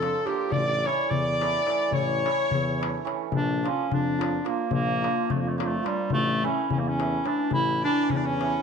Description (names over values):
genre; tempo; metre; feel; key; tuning
balkan folk, Balkan wedding band; 215 BPM (eighths); 5/8; straight; A phrygian dominant; A4 = 439 Hz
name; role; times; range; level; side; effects
clear clarinet; melody; 0.0-8.6 s; G3 to D5; -26 LUFS; left 1 dB; none
warm violin; second line; 0.0-3.0, 7.8-8.6 s; G4 to D5; -34 LUFS; left 10 dB; none
hammered dulcimer; accompaniment; 0.0-8.6 s; E3 to F4; -31 LUFS; right 14 dB; none
warm tuba; bass; 0.0-8.6 s; A1 to F2; -32 LUFS; equal; none
darbuka; percussion; 0.0-8.6 s; none; -31 LUFS; left 6 dB; none
room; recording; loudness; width
moderate plate reverb, RT60 2.7 s; 1960s-style stereo with parts hard left and right; -23 LUFS; side -6 dB against mid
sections
0.0-3.3 A section; 3.3-8.6 A section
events
none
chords
0.0 Bb; 0.5 A; 3.3 Bb; 6.1 A